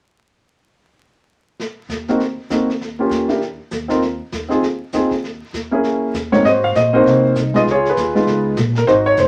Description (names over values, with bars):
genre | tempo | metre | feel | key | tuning
jazz piano trio | 198 BPM | 4/4 | swing 60% on 8ths | Ab mixolydian | A4 = 440 Hz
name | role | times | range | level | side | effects
vintage brush drum kit | drums | 1.6-9.3 s | brushed snare drum, hi-hat, kick drum, snare drum | -31 LUFS | equal | none
upright bass | bass | 1.9-9.3 s | F1 to C3 | -27 LUFS | equal | none
warm concert grand piano | melody | 2.1-9.3 s | Ab2 to F5 | -17 LUFS | equal | none
room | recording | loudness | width
moderate studio reverb, RT60 0.5 s | vinyl crackle | -17 LUFS | mono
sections
1.6-6.4 A section; 6.4-9.3 B section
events
none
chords
1.6 Ebm6; 6.4 Ab7; 7.7 Db7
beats
| 1.59 1.89 2.20 2.50 | 2.81 3.11 3.41 3.72 | 4.02 4.32 4.63 4.93 | 5.24 5.54 5.84 6.14 | 6.45 6.75 7.05 7.36 | 7.66 7.96 8.27 8.57 | 8.87 9.18